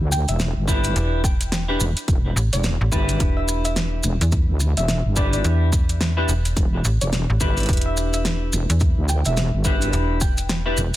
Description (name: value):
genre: glitch hop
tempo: 107 BPM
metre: 4/4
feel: swing 60% on 16ths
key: E minor pentatonic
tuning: A4 = 439 Hz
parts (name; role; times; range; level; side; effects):
- clean electric guitar; stabs; 0.0-10.8 s; D4 to B4; -27 LUFS; left 1 dB; wide subtle chorus, sidechain pumping, digital delay
- wobble bass; bass; 0.0-10.9 s; E1 to D2; -21 LUFS; equal; chorus
- woody wave-folded pluck; melody; 0.1-10.7 s; D5 to G5; -31 LUFS; equal; lush chorus, digital delay
- maracas; percussion; 0.1-11.0 s; none; -29 LUFS; equal; none
- pop drum kit; drums; 0.3-11.0 s; hi-hat, rim click, snare drum; -27 LUFS; equal; small room ambience
- electronic kick drum; drums; 0.7-10.3 s; none; -21 LUFS; equal; small room ambience
- slap-like FM bass; bass; 1.0-10.8 s; E1 to E2; -21 LUFS; equal; none
room: digital ambience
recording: dense, heavily limited modern master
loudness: -18 LUFS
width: side -15 dB against mid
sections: 0.0-11.0 A section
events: none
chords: 0.0 Em7